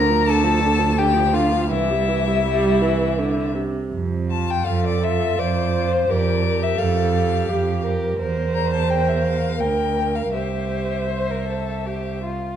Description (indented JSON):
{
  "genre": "classical, slow romantic movement for string quartet",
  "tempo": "83 BPM",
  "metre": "3/4",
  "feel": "uneven beats, rubato",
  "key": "F major",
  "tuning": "A4 = 441 Hz",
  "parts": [
    { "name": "rich violin", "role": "melody", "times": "0.0-12.2 s", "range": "C5 to Bb5", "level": "-24 LUFS", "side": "left 9 dB", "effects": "none" },
    { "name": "rich violin", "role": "second line", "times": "0.0-12.6 s", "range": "E4 to C5", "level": "-27 LUFS", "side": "left 2 dB", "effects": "none" },
    { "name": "warm viola", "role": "accompaniment", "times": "0.0-12.2 s", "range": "C3 to C5", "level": "-24 LUFS", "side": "right 3 dB", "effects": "none" },
    { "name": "warm cello", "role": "bass", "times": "0.0-12.3 s", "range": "C2 to F2", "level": "-22 LUFS", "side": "right 3 dB", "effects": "none" }
  ],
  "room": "wet recital hall reverb, RT60 1.5 s",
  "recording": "dark, warm production",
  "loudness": "-18 LUFS",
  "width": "side -9 dB against mid",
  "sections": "0.0-3.9 A section; 3.9-12.6 B section",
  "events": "none",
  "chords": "0.0 Bb/D; 1.7 C; 3.9 F; 6.1 Gm7/F; 8.2 C7/E; 10.3 C",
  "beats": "0.27 0.97 | 1.70 2.44 3.16 | 3.91 4.66 5.38 | 6.08 6.78 7.49 | 8.18 8.87 9.59 | 10.33 11.09 11.85"
}